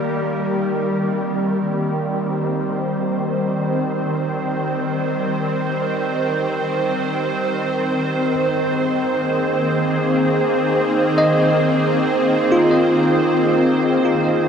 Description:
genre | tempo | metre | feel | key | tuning
ambient | free time | none | none | unclear | A4 = 438 Hz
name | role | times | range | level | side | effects
evolving wavetable pad | sustained chords | 0.0-14.5 s | Eb3 to C5 | -18 LUFS | equal | ensemble chorus, built-in reverb
organ-like drone | drone | 8.9-14.5 s | Eb3 to Eb4 | -25 LUFS | equal | ensemble chorus, built-in reverb
bell-like tine electric piano | arpeggios | 11.2-14.5 s | F4 to Eb5 | -19 LUFS | equal | ping-pong delay
room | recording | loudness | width
wet huge ambient reverb, RT60 7.7 s | none | -17 LUFS | side -7 dB against mid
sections
0.0-14.5 A section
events
none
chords
0.0 Cm; 8.2 Abadd9

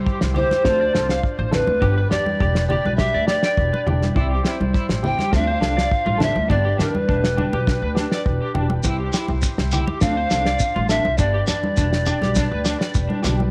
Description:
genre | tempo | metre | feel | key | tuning
highlife guitar band | 102 BPM | 4/4 | straight | unclear | A4 = 440 Hz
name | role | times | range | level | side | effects
overdriven combo organ | sustained chords | 0.0-13.5 s | D4 to C5 | -36 LUFS | equal | cassette tape
upright bass | bass | 0.0-13.5 s | E1 to E2 | -26 LUFS | equal | none
electric guitar at the edge of break-up | arpeggios | 0.1-13.3 s | D4 to G5 | -32 LUFS | equal | tremolo, cassette tape, tape echo
damped 70s drum kit | drums | 0.1-13.4 s | kick drum, snare drum | -25 LUFS | equal | none
clean electric guitar | accompaniment | 0.3-13.4 s | F3 to A4 | -33 LUFS | equal | ensemble chorus, cassette tape
polished pan flute | melody | 0.4-13.2 s | B4 to G5 | -25 LUFS | equal | cassette tape, tape echo
congas | percussion | 0.4-13.5 s | none | -28 LUFS | equal | none
shekere | percussion | 8.8-13.4 s | none | -30 LUFS | equal | none
room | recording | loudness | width
moderate spring reverb, RT60 1.7 s, small room reverb | home recording on cassette | -20 LUFS | mono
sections
0.0-13.5 A section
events
none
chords
0.0 C; 0.6 Dm7; 1.8 G; 4.2 C; 5.3 Dm7; 6.5 G; 8.8 C; 10.0 Dm7; 11.2 G

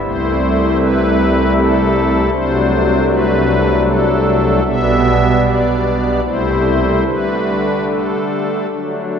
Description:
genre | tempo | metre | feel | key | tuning
classical, chorale-style piece for pipe organ | 77 BPM | 3/4 | uneven beats | unclear | A4 = 439 Hz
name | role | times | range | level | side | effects
pipe organ, strings celeste | solo | 0.0-9.2 s | B1 to E5 | -12 LUFS | equal | none
room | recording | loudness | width
wet church reverb, RT60 3.3 s | recorded in a church or concert hall | -12 LUFS | side -7 dB against mid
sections
0.0-9.2 A section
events
none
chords
0.0 Am7/C; 2.3 D7/C; 4.7 G/B; 6.2 Am7/C; 7.1 Dsus4

